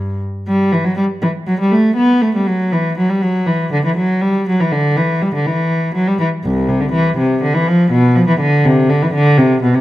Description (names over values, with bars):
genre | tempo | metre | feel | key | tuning
classical, baroque-style suite movement for unaccompanied cello | 81 BPM (dotted quarters) | 12/8 | rubato | E minor | A4 = 440 Hz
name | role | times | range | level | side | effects
dark cello | solo | 0.0-9.8 s | C2 to B3 | -12 LUFS | equal | none
room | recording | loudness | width
moderate recital hall reverb, RT60 1.4 s | close, detailed microphones | -12 LUFS | side -15 dB against mid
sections
0.5-9.8 A section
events
none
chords
none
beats
| 0.48 1.23 1.98 2.72 | 3.46 4.21 4.95 5.69 | 6.44 7.17 7.91 8.64 | 9.37